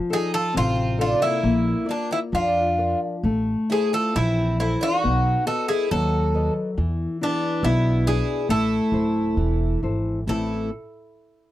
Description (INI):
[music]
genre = fado-style ballad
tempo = 68 BPM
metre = 2/4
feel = rubato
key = A harmonic minor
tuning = A4 = 439 Hz
[part]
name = nylon-string guitar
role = accompaniment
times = 0.0-10.7 s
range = A2 to D#5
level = -25 LUFS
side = left 2 dB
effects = none
[part]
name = Greek bouzouki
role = melody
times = 0.1-10.7 s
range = D4 to A4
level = -24 LUFS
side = equal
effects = none
[part]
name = picked twelve-string acoustic guitar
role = second line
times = 0.1-10.7 s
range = Bb3 to F#4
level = -30 LUFS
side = right 4 dB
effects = none
[part]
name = upright bass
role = bass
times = 0.6-10.7 s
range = D1 to F2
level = -24 LUFS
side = equal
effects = none
[sound]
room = light reverb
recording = dry, close 1970s-style studio recording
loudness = -20 LUFS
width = side -14 dB against mid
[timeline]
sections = 0.0-10.3 A section; 10.3-11.5 B section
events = none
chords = 0.0 F7; 1.4 Bb; 3.2 Am; 5.0 B7; 6.8 E7; 8.5 Am